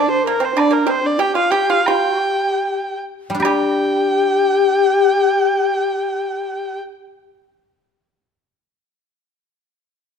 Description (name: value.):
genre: chinese traditional, Chinese chamber ensemble.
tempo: 67-98 BPM.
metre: 2/4.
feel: straight.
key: G yu mode.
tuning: A4 = 440 Hz.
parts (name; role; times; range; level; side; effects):
warm erhu; melody; 0.0-6.8 s; Bb4 to G5; -19 LUFS; right 2 dB; none.
mellow low xiao; second line; 0.0-6.8 s; D4 to C5; -18 LUFS; left 5 dB; none.
pipa; second line; 0.0-6.8 s; Bb3 to G4; -21 LUFS; right 7 dB; none.
woodblock; percussion; 0.6-3.8 s; none; -25 LUFS; right 2 dB; none.
guzheng; accompaniment; 3.3-9.4 s; G3 to G4; -24 LUFS; left 1 dB; none.
room: moderate recital hall reverb, RT60 1.5 s.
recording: none.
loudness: -15 LUFS.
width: side -6 dB against mid.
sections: 0.0-3.4 A section; 3.4-7.0 B section.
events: slowing down 0.6-3.4.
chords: none.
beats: | 0.57 1.19 | 1.86 2.59 | 3.42 4.31 | 5.20 6.08.